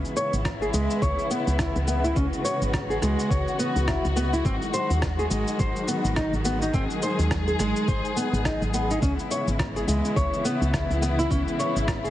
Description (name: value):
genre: organic downtempo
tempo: 105 BPM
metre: 4/4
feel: swing 58% on 16ths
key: C# minor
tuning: A4 = 443 Hz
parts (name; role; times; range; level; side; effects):
- dark studio string section; sustained chords; 0.0-12.1 s; C#3 to G#4; -29 LUFS; left 1 dB; sidechain pumping
- electronic shaker and rim click; drums; 0.0-12.1 s; none; -33 LUFS; equal; overdrive
- nylon-string guitar; arpeggios; 0.2-12.1 s; G#3 to C#5; -27 LUFS; equal; low-pass filter, ping-pong delay
- woody FM bass; bass; 0.3-12.1 s; G#1 to D#2; -26 LUFS; equal; none
- electronic kick drum; drums; 0.5-12.0 s; none; -29 LUFS; equal; overdrive
room: light reverb, small room ambience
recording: heavily compressed radio sound, nothing above 10.4 kHz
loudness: -22 LUFS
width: side -13 dB against mid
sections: 0.0-12.1 A section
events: none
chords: 0.0 C#m7; 4.5 G#7; 9.0 C#m7